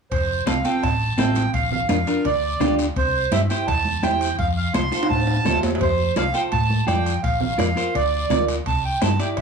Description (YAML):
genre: latin, cumbia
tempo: 168 BPM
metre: 4/4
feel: straight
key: F major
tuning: A4 = 440 Hz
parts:
  - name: accordion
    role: melody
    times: 0.1-9.4 s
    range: C5 to C6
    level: -23 LUFS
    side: right 4 dB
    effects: plate reverb
  - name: hollow-body short-scale fingered electric bass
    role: bass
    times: 0.1-9.4 s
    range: F1 to A2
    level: -24 LUFS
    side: equal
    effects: none
  - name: bombo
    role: percussion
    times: 0.1-9.4 s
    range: none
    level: -29 LUFS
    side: left 3 dB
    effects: none
  - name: congas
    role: percussion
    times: 0.1-9.4 s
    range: none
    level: -29 LUFS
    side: right 4 dB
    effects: none
  - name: guiro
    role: percussion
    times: 0.1-9.4 s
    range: none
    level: -36 LUFS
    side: left 6 dB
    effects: none
  - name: timbales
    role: percussion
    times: 0.1-9.4 s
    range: none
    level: -30 LUFS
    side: right 1 dB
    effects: none
  - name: clean electric guitar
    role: accompaniment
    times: 0.5-9.4 s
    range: C4 to D5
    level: -24 LUFS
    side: equal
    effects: none
room: moderate small room reverb, RT60 0.5 s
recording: small room ambience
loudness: -18 LUFS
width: side -5 dB against mid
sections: 0.1-9.4 A section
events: drum fill 4.9-5.8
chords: 0.1 F; 1.5 Bb; 3.0 C; 4.4 F; 7.2 Bb; 8.7 C